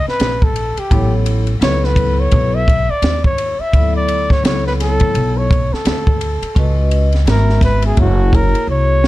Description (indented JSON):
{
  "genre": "hip hop, jazz-hop",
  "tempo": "85 BPM",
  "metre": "4/4",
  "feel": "swing 61% on 16ths",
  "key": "unclear",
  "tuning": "A4 = 439 Hz",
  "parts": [
    { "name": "breathy flugelhorn", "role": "melody", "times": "0.0-9.1 s", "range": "F#4 to E5", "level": "-19 LUFS", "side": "equal", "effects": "none" },
    { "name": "upright bass", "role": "bass", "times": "0.0-9.1 s", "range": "F#1 to D#2", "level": "-16 LUFS", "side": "equal", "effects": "none" },
    { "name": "compact cocktail drum kit", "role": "drums", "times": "0.1-9.1 s", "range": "hi-hat, kick drum, ride cymbal, snare drum", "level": "-17 LUFS", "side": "equal", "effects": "none" },
    { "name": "vibraphone with soft mallets", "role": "accompaniment", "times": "0.9-9.1 s", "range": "F#3 to E5", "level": "-21 LUFS", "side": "left 2 dB", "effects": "none" }
  ],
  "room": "studio ambience",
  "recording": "none",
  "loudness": "-12 LUFS",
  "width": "side -17 dB against mid",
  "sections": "0.0-9.1 A section",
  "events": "flugelhorn solo 0.0-9.1; drum fill 8.7-9.1",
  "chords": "0.0 N.C.; 0.9 A; 3.7 Dmaj7; 6.6 C#m7; 8.0 F#7"
}